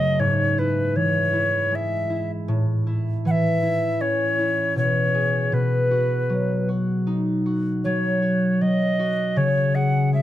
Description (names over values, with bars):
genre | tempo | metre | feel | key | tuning
children's music, lullaby | 79 BPM | 3/4 | straight | unclear | A4 = 441 Hz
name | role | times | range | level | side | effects
alto recorder | melody | 0.0-10.2 s | B4 to F#5 | -23 LUFS | right 1 dB | none
concert harp | accompaniment | 0.0-10.2 s | F#2 to G#4 | -21 LUFS | left 1 dB | none
room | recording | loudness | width
light reverb | dark, warm production | -19 LUFS | side -13 dB against mid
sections
0.0-10.2 A section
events
none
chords
0.2 C#m/G#; 2.5 A; 4.8 G#madd11/B; 5.5 B; 9.4 C#5